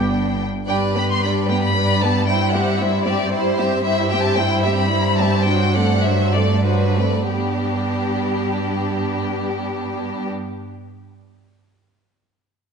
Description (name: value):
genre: quick classical-period movement for symphony orchestra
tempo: 92-116 BPM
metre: 3/4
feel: rubato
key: G major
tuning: A4 = 440 Hz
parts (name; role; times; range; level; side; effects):
- warm symphonic violin section; melody; 0.0-10.3 s; G4 to C6; -24 LUFS; left 3 dB; none
- rich chamber violin section; second line; 0.0-10.3 s; D4 to E5; -25 LUFS; left 1 dB; none
- warm chamber viola section; accompaniment; 0.0-10.3 s; F#3 to G4; -23 LUFS; equal; none
- clear chamber cello section; bass; 0.0-10.3 s; G2; -21 LUFS; right 2 dB; none
room: moderate scoring stage reverb, RT60 1.8 s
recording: nothing above 10.4 kHz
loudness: -17 LUFS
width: side -6 dB against mid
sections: 0.7-7.3 A section; 7.3-11.0 B section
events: slowing down 3.0-7.3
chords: 0.0 G; 2.3 C/G; 5.5 D7/G; 7.3 G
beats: 0.12 | 0.68 1.22 1.75 | 2.27 2.79 3.31 | 3.84 4.36 4.91 | 5.47 6.05 6.65 | 7.29 7.92 8.54 | 9.17 9.79